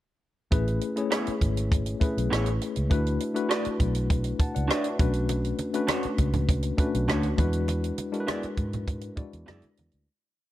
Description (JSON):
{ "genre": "lush 1970s-style soul", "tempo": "101 BPM", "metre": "4/4", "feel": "straight", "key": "A major", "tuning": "A4 = 439 Hz", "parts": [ { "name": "tine electric piano", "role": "accompaniment", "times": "0.5-10.1 s", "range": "G#3 to A5", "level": "-29 LUFS", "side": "left 3 dB", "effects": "medium stereo tremolo" }, { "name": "vintage muted fingered electric bass", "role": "bass", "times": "0.5-10.1 s", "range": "G#1 to G#2", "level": "-28 LUFS", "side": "equal", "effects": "none" }, { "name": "compact cocktail drum kit", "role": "drums", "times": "0.5-10.1 s", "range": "hi-hat, kick drum, rim click", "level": "-27 LUFS", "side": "right 1 dB", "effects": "none" }, { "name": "electric guitar through a small old amp", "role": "riff", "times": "1.1-9.6 s", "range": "A3 to D5", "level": "-32 LUFS", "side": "right 3 dB", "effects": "none" }, { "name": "congas", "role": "percussion", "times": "5.3-9.9 s", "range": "none", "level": "-35 LUFS", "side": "right 3 dB", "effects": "none" } ], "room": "small room ambience", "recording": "none", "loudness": "-24 LUFS", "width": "side -14 dB against mid", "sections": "0.5-10.1 verse", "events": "fade-out 7.7-10.1", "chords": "0.5 Amaj9; 2.9 D6; 5.0 Bm9; 7.4 E7" }